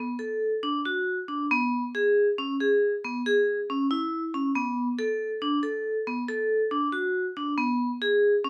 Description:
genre	contemporary instrumental, chamber music in an uneven meter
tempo	138 BPM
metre	7/4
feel	straight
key	B dorian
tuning	A4 = 436 Hz
part	vibraphone with medium hard mallets	solo	0.0-8.5 s	B3 to A4	-27 LUFS	equal	none
room	little or no reverb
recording	close, detailed microphones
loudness	-27 LUFS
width	mono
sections	0.0-8.5 A section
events	none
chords	none

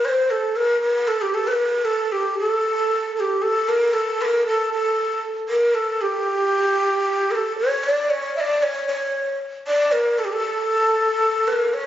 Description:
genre	arabic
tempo	116 BPM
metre	4/4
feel	straight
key	A maqam hijaz from 3.4 s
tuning	A4 = 441 Hz
part	breathy hollow ney	solo	0.0-11.9 s	G4 to E5	-19 LUFS	equal	slapback echo
room	moderate scoring stage reverb, RT60 1.5 s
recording	recorded on a phone in the room, studio ambience, compression, nothing above 7.5 kHz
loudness	-19 LUFS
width	side -12 dB against mid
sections	0.0-3.4 A section; 3.4-11.9 B section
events	none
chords	none

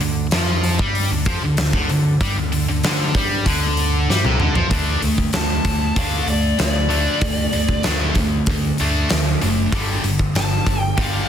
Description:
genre	hard rock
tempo	96 BPM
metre	4/4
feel	straight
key	unclear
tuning	A4 = 440 Hz
part	high-gain distorted guitar	riff	0.0-11.3 s	G2 to D4	-21 LUFS	equal	distortion
part	overdriven picked electric bass	bass	0.0-11.2 s	F#1 to G2	-22 LUFS	equal	none
part	huge arena drum kit	drums	0.0-11.1 s	hi-hat, kick drum, snare drum, toms	-21 LUFS	equal	none
part	smooth overdriven lead guitar	melody	5.4-11.3 s	D5 to A5	-24 LUFS	left 2 dB	slapback echo
room	light reverb, studio ambience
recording	dense, heavily limited modern master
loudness	-16 LUFS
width	side -9 dB against mid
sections	0.0-4.7 A section; 4.7-11.3 B section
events	drum fill 4.1-4.7; lead electric guitar solo 4.7-11.3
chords	0.0 D5; 9.7 G5

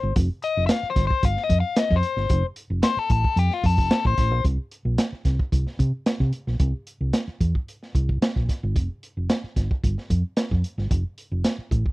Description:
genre	funk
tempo	112 BPM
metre	4/4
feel	straight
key	unclear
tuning	A4 = 445 Hz
part	crunchy overdriven guitar	accompaniment	0.0-4.4 s	F4 to F5	-24 LUFS	left 6 dB	wah
part	hollow-body short-scale fingered electric bass	bass	0.0-11.8 s	F1 to C3	-23 LUFS	equal	none
part	crunchy breakbeat drum kit	drums	0.2-11.9 s	hi-hat, kick drum, snare drum	-23 LUFS	right 1 dB	none
room	little or no reverb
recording	dry, close 1970s-style studio recording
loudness	-21 LUFS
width	side -19 dB against mid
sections	0.0-4.4 A section; 4.4-11.9 B section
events	overdriven electric guitar solo 0.0-4.4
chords	0.2 Fadd9; 4.4 C7(no3); 8.8 Fsus2

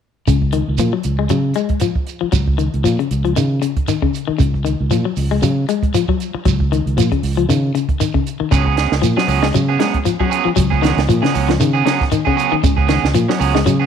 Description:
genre	afrobeat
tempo	116 BPM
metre	4/4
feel	swing 56% on 16ths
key	Db mixolydian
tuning	A4 = 437 Hz
part	electric guitar at the edge of break-up	arpeggios	0.3-13.9 s	Db3 to Ab3	-19 LUFS	left 10 dB	none
part	fingered electric bass	bass	0.3-13.9 s	Db2 to Db3	-17 LUFS	right 1 dB	none
part	compact cocktail drum kit	drums	0.3-13.8 s	hi-hat, kick drum, snare drum	-20 LUFS	right 3 dB	none
part	shekere	percussion	0.3-13.8 s	none	-22 LUFS	right 5 dB	none
part	electric guitar at the edge of break-up	stabs	8.5-13.9 s	Gb3 to Ab4	-19 LUFS	right 11 dB	none
room	light reverb, studio reverb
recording	1960s-style stereo with parts hard left and right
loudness	-14 LUFS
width	side -8 dB against mid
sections	0.3-13.9 A section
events	none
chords	0.3 Db7sus4

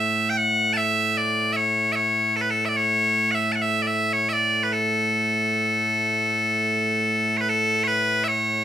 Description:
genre	scottish traditional, Scottish pipe music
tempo	76 BPM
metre	3/4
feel	straight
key	A major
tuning	A4 = 439 Hz
part	loud bright bagpipes	solo	0.0-8.6 s	A2 to A5	-20 LUFS	equal	none
room	moderate studio reverb, RT60 0.5 s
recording	band playing live in one room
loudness	-20 LUFS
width	side -10 dB against mid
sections	0.0-7.5 A section; 7.5-8.6 B section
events	none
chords	none

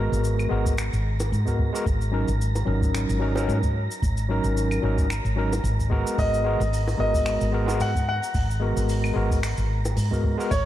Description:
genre	sunset chillout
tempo	111 BPM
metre	4/4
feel	swing 56% on 16ths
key	G# minor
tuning	A4 = 441 Hz
part	overdriven tine electric piano	accompaniment	0.0-10.5 s	F#3 to A#4	-28 LUFS	equal	auto-pan, tape echo
part	woody fretless electric bass	bass	0.0-10.7 s	G#1 to G#2	-24 LUFS	equal	none
part	wind-like tuned noise texture	texture	0.0-10.7 s	A#5	-37 LUFS	right 4 dB	built-in reverb
part	vintage brush drum kit	drums	0.1-10.6 s	cabasa, claves, finger snaps, hi-hat	-36 LUFS	left 1 dB	none
part	electronic kick drum	drums	0.7-10.6 s	none	-25 LUFS	equal	overdrive
part	bongos	percussion	1.2-9.9 s	none	-36 LUFS	left 1 dB	none
part	clear concert grand piano	melody	6.2-10.7 s	C#5 to F#5	-27 LUFS	left 1 dB	tape echo
room	light reverb, small room ambience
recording	dark, warm production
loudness	-21 LUFS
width	side -13 dB against mid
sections	0.0-10.7 A section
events	none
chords	0.0 G#m9; 1.9 D#m7/G#; 6.2 G#m9

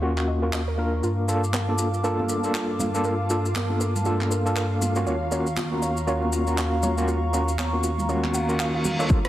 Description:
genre	deep house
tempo	119 BPM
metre	4/4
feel	swing 59% on 16ths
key	unclear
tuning	A4 = 440 Hz
part	hollow soft pad	sustained chords	0.0-9.3 s	F5 to D6	-32 LUFS	equal	chorus, sidechain pumping
part	warbly dusty pluck	arpeggios	0.0-9.2 s	F4 to Gb5	-33 LUFS	right 2 dB	chorus, phaser, vintage 12-bit sampler grit, sidechain pumping, tape echo
part	overdriven tine electric piano	stabs	0.0-9.2 s	Bb3 to Bb4	-26 LUFS	equal	fast tremolo, sidechain pumping, tape echo
part	smooth synth bass	bass	0.0-9.2 s	Eb2 to G2	-27 LUFS	equal	sidechain pumping
part	house drum kit	drums	0.2-9.3 s	handclaps, hi-hat, rim click	-33 LUFS	equal	soft clipping on snare
part	maracas	percussion	1.0-9.2 s	none	-35 LUFS	left 3 dB	none
part	soft string machine	texture	1.0-9.1 s	F4 to F5	-38 LUFS	equal	ensemble chorus
part	congas	percussion	1.5-9.0 s	none	-33 LUFS	right 2 dB	none
part	reverse cymbal	sound effects	8.3-9.1 s	none	-33 LUFS	left 1 dB	none
part	electronic kick drum	drums	9.1-9.2 s	none	-19 LUFS	equal	none
room	light reverb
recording	dense, heavily limited modern master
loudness	-22 LUFS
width	side -13 dB against mid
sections	0.0-9.1 A section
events	filter sweep on synth pluck 0.0-9.1; reverse cymbal 8.3-9.1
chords	0.0 Ebm9; 1.0 Gm9; 5.1 Ebm9

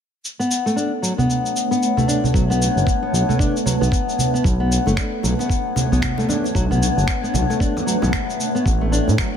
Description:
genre	organic downtempo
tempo	114 BPM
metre	4/4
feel	swing 60% on 16ths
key	B minor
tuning	A4 = 440 Hz
part	granular cloud pad	sustained chords	1.3-9.4 s	A3 to G5	-25 LUFS	right 2 dB	built-in reverb, sidechain pumping
part	electronic cabasa, congas and finger snaps	drums	0.2-9.3 s	none	-24 LUFS	right 2 dB	none
part	nylon-string guitar	arpeggios	0.4-9.4 s	F#3 to D4	-22 LUFS	left 2 dB	low-pass filter, ping-pong delay
part	smooth gliding synth bass	bass	2.3-9.1 s	F#1 to A2	-19 LUFS	equal	sidechain pumping
part	electronic kick drum	drums	2.3-9.3 s	none	-21 LUFS	equal	none
part	bongos and congas	percussion	4.9-9.2 s	none	-32 LUFS	left 3 dB	none
room	light reverb, digital ambience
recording	none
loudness	-17 LUFS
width	side -8 dB against mid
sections	0.2-4.4 A section; 4.4-9.4 B section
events	filter sweep on ambient pad 0.2-4.4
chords	0.2 Bm9; 8.7 A9sus4

